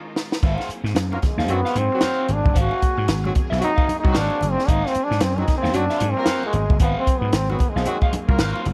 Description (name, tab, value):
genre	funk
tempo	113 BPM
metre	4/4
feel	swing 60% on 16ths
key	Ab mixolydian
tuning	A4 = 440 Hz
part	rich studio string section	sustained chords	0.0-8.7 s	Eb3 to Ab4	-38 LUFS	equal	none
part	compact cocktail drum kit	drums	0.2-8.7 s	crash cymbal, hi-hat, kick drum, snare drum	-24 LUFS	equal	none
part	electric guitar at the edge of break-up	accompaniment	0.4-8.7 s	Gb4 to F5	-32 LUFS	equal	wah
part	vintage slap bass	bass	0.4-8.7 s	Gb1 to Ab2	-25 LUFS	equal	tube saturation
part	congas	percussion	0.4-8.7 s	none	-36 LUFS	equal	none
part	mellow horn section	second line	1.1-8.6 s	Eb3 to Bb4	-32 LUFS	equal	none
part	clear trombone	melody	1.3-8.2 s	Ab3 to Gb4	-26 LUFS	equal	none
room	light reverb, small room ambience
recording	dark, warm production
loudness	-21 LUFS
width	mono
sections	0.4-8.7 A section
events	drum fill 0.0-0.4; band accent 0.0-0.4; trombone solo 0.4-8.7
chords	0.4 Ab13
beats	| 0.43 0.96 1.49 2.02 | 2.56 3.09 3.62 4.15 | 4.68 5.21 5.75 6.28 | 6.81 7.34 7.87 8.39